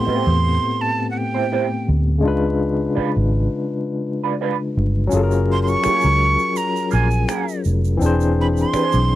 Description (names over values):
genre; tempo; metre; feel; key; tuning
R&B, neo-soul; 83 BPM; 4/4; swing 54% on 16ths; unclear; A4 = 442 Hz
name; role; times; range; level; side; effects
breathy bright jazz flute; melody; 0.0-9.2 s; F#5 to C#6; -21 LUFS; right 3 dB; slapback echo
barky tine electric piano; accompaniment; 0.0-9.2 s; A2 to C5; -21 LUFS; left 3 dB; overdrive, fast tremolo
electric guitar through a small old amp; second line; 0.1-9.0 s; A#3 to C5; -23 LUFS; right 9 dB; wah
vintage muted fingered electric bass; bass; 0.1-9.2 s; E1 to E2; -18 LUFS; equal; none
egg shaker and finger snaps; percussion; 5.1-9.1 s; none; -34 LUFS; left 1 dB; none
room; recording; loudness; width
little or no reverb; dry, close 1970s-style studio recording, vinyl crackle; -17 LUFS; side -14 dB against mid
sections
0.0-9.2 A section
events
none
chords
0.0 Am7; 2.2 C#7b9; 5.1 F#maj9; 8.0 E7b13